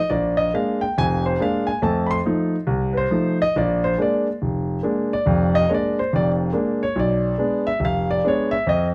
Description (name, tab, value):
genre	solo jazz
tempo	140 BPM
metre	4/4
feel	swing 64% on 8ths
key	unclear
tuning	A4 = 440 Hz
part	warm concert grand piano	solo	0.0-8.9 s	F1 to C6	-21 LUFS	equal	none
room	light reverb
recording	dark, warm production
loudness	-21 LUFS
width	mono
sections	0.0-8.9 A section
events	grand piano solo 0.0-8.9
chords	0.1 Bb7; 1.8 F7; 3.5 Bb7; 7.0 Bdim7